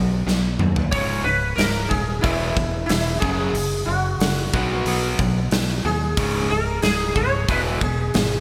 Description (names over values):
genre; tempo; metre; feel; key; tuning
hard rock; 91 BPM; 4/4; straight; C# dorian; A4 = 437 Hz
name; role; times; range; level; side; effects
sitar; melody; 0.0-8.4 s; E4 to C#5; -27 LUFS; equal; none
overdriven semi-hollow guitar; riff; 0.0-8.4 s; C#2 to B3; -27 LUFS; equal; none
growling fingered electric bass; bass; 0.0-8.4 s; C#1 to D#2; -28 LUFS; equal; overdrive
big rock drum kit; drums; 0.3-8.3 s; hi-hat, kick drum, snare drum, toms; -26 LUFS; equal; gated reverb
room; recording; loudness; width
moderate lush hall reverb, RT60 2.9 s; bright 1980s-style digital production; -21 LUFS; mono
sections
0.0-8.4 A section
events
drum fill 0.3-0.9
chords
0.0 B; 0.9 C#5; 2.2 E5; 3.2 F#5; 4.5 B; 6.2 C#5; 7.5 E